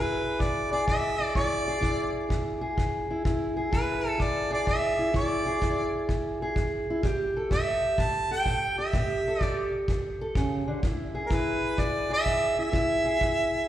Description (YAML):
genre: acoustic country blues, solo or duo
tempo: 126 BPM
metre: 4/4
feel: swing 67% on 8ths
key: E mixolydian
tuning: A4 = 441 Hz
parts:
  - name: warm harmonica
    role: melody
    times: 0.0-13.7 s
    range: A#4 to A5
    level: -27 LUFS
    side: right 1 dB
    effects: slapback echo
  - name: fingerpicked steel-string acoustic guitar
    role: accompaniment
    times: 0.0-13.7 s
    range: A2 to A4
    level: -29 LUFS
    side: equal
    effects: slapback echo
  - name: kick drum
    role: drums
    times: 0.4-13.4 s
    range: none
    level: -30 LUFS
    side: equal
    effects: none
room: light reverb, small room ambience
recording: live gig heard through the venue's PA, recital hall reverb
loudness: -25 LUFS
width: side -12 dB against mid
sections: 0.0-13.7 A section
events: none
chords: 0.0 E7; 7.0 A7(no3); 10.8 E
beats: 0.40 0.87 | 1.35 1.82 2.30 2.77 | 3.24 3.72 4.19 4.67 | 5.14 5.61 6.09 6.56 | 7.03 7.51 7.98 8.46 | 8.93 9.40 9.88 10.36 | 10.83 11.30 11.78 12.26 | 12.73 13.21